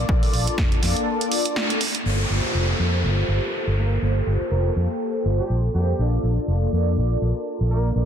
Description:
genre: filtered disco house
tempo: 122 BPM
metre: 4/4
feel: swing 57% on 16ths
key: G minor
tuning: A4 = 442 Hz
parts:
  - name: mellow synth brass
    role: accompaniment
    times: 0.0-8.1 s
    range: Bb3 to D5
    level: -25 LUFS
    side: equal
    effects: chorus, phaser, sidechain pumping, low-pass filter
  - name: vintage muted fingered electric bass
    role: bass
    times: 0.0-8.1 s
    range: F1 to F2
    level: -21 LUFS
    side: equal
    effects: sidechain pumping, low-pass filter
  - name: electronic kick drum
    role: drums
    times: 0.1-0.7 s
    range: none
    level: -22 LUFS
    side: equal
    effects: none
  - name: punchy analog drum machine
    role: drums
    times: 0.2-2.0 s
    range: hi-hat, snare drum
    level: -26 LUFS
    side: right 2 dB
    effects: sidechain pumping on hats, low-pass filter on hats, low-pass filter on snare, low-pass filter on room
  - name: downlifter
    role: sound effects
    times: 2.1-6.0 s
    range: none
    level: -29 LUFS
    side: equal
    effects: none
  - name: brilliant horn section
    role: melody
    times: 3.8-7.9 s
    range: G3 to Bb4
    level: -34 LUFS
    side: right 1 dB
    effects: sidechain pumping, low-pass filter
room: light reverb, digital ambience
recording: dense, heavily limited modern master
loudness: -20 LUFS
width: side -8 dB against mid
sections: 0.0-2.1 A section; 2.1-8.1 B section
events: band accent 1.6; filter sweep 2.1-8.1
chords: 0.0 Bbmaj7; 2.1 Gm11; 6.0 Bbmaj7

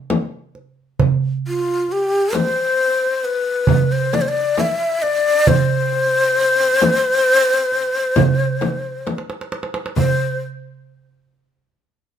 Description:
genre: Arabic maqam ensemble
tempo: 134 BPM (eighths)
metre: 10/8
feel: straight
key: C maqam ajam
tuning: A4 = 442 Hz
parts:
  - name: darbuka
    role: percussion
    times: 0.1-10.4 s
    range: none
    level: -19 LUFS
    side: right 6 dB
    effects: none
  - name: frame drum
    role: percussion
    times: 0.1-10.4 s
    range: none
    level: -21 LUFS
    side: left 4 dB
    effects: none
  - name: breathy mellow ney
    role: melody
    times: 1.5-10.4 s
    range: F4 to E5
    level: -16 LUFS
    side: left 2 dB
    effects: plate reverb
room: moderate studio reverb, RT60 0.6 s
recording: none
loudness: -15 LUFS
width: side -9 dB against mid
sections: 0.0-10.0 A section; 10.0-12.2 B section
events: drum fill 9.1-10.0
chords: none

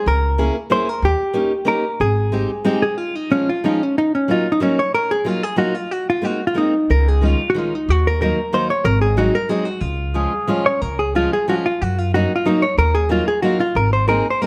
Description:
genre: musette waltz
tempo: 184 BPM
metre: 3/4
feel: rubato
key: Db major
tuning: A4 = 440 Hz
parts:
  - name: hollow-body jazz guitar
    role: melody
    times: 0.0-14.5 s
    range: Db4 to Db5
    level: -21 LUFS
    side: equal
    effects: none
  - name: upright bass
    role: bass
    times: 0.1-2.4, 6.9-14.2 s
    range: Ab1 to Gb2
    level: -21 LUFS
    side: equal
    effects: none
  - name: fingerpicked steel-string acoustic guitar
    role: accompaniment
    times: 0.4-14.5 s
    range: Eb3 to Ab4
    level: -24 LUFS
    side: equal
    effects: none
  - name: mellow accordion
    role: second line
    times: 10.1-10.8 s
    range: Db4 to Ab4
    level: -27 LUFS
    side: equal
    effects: none
room: light reverb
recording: none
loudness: -18 LUFS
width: mono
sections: 0.0-3.0 A section; 3.0-10.8 B section; 10.8-14.5 B section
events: none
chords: 0.1 Dbm6; 1.0 Eb7; 2.0 Abmaj7; 3.0 Db; 4.0 Gb6; 4.9 Ebmadd9; 5.9 Abadd9; 6.9 Dbsus2; 7.9 Ebm; 8.9 Ab7; 9.8 Db; 11.8 Gb6; 12.8 Ebmadd9; 13.8 Abadd9

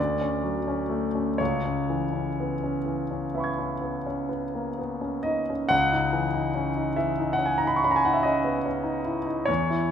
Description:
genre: classical, impressionist solo piano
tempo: 40-49 BPM (dotted quarters)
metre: 9/8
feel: rubato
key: C# minor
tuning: A4 = 444 Hz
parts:
  - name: clear concert grand piano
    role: solo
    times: 0.0-9.9 s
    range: C#2 to G#6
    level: -24 LUFS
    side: equal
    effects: none
room: moderate scoring stage reverb, RT60 1.7 s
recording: minimal, uncompressed stereo recording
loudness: -24 LUFS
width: side -8 dB against mid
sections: 0.0-5.7 A section; 5.7-9.9 A section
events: none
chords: 0.0 Dmaj7; 1.4 C#m7; 5.7 C#madd9

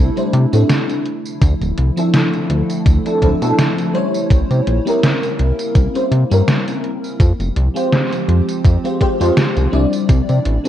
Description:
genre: vaporwave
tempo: 83 BPM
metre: 4/4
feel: swing 55% on 16ths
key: C major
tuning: A4 = 439 Hz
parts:
  - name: FM electric piano with soft pad layer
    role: accompaniment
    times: 0.0-10.7 s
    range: F3 to D5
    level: -18 LUFS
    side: left 1 dB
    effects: phaser, ensemble chorus, analog delay
  - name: warbly tape-like pad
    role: sustained chords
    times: 0.0-10.7 s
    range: C3 to G4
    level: -25 LUFS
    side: right 1 dB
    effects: chorus, built-in reverb, vintage 12-bit sampler grit
  - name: chorused synth bass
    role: bass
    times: 0.0-10.6 s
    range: D1 to C3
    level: -15 LUFS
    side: equal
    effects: tube saturation
  - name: detuned 8-bit digital drum machine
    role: drums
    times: 0.2-10.7 s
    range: hi-hat, snare drum, tambourine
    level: -20 LUFS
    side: equal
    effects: overdrive, gated reverb
  - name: electronic kick drum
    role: drums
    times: 1.4-10.2 s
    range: none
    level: -13 LUFS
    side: equal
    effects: overdrive
room: moderate recital hall reverb, RT60 1.7 s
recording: cassette tape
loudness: -13 LUFS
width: side -11 dB against mid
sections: 0.0-10.7 A section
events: none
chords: 0.0 C69; 1.1 Dm9; 4.3 C7b9; 7.2 Fmadd9; 10.1 C69

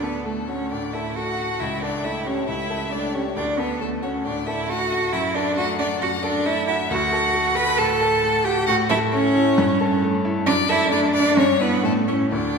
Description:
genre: quick classical-period movement for piano trio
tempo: 135 BPM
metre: 4/4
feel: rubato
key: D major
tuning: A4 = 439 Hz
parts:
  - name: clear violin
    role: melody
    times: 0.0-12.6 s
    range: A4 to B5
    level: -27 LUFS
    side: left 7 dB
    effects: none
  - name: rich cello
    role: second line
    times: 0.0-12.6 s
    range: A3 to B4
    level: -21 LUFS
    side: right 3 dB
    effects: none
  - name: clear baby grand piano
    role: accompaniment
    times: 0.0-12.6 s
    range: C#2 to A4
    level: -25 LUFS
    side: left 2 dB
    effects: none
room: wet church reverb, RT60 2.5 s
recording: recorded in a church or concert hall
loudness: -19 LUFS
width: side -5 dB against mid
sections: 0.0-12.6 A section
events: none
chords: 0.0 D; 1.6 A7/C#; 3.4 D; 5.1 Dadd9/F#; 6.9 D; 8.7 A; 9.6 A7/G; 10.5 D/F#; 11.4 Em7/G; 11.8 A

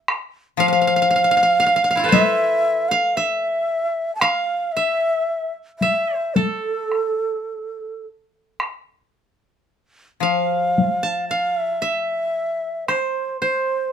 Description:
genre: japanese traditional, Japanese chamber music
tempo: 52-59 BPM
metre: 4/4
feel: rubato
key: unclear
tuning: A4 = 442 Hz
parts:
  - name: solo taiko drums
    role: percussion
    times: 0.1-13.1 s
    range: none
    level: -20 LUFS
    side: left 3 dB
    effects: none
  - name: breathy reedy long shakuhachi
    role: melody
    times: 0.6-13.9 s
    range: A4 to A5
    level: -20 LUFS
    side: right 1 dB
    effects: none
  - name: koto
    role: second line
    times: 0.6-13.9 s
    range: E4 to A5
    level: -23 LUFS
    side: right 2 dB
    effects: none
  - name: koto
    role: accompaniment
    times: 0.6-3.7, 10.2-13.4 s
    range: F3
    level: -23 LUFS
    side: left 11 dB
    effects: none
room: moderate studio reverb, RT60 0.6 s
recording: none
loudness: -18 LUFS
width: side -8 dB against mid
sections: 0.0-8.6 A section; 8.6-13.9 B section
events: none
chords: none

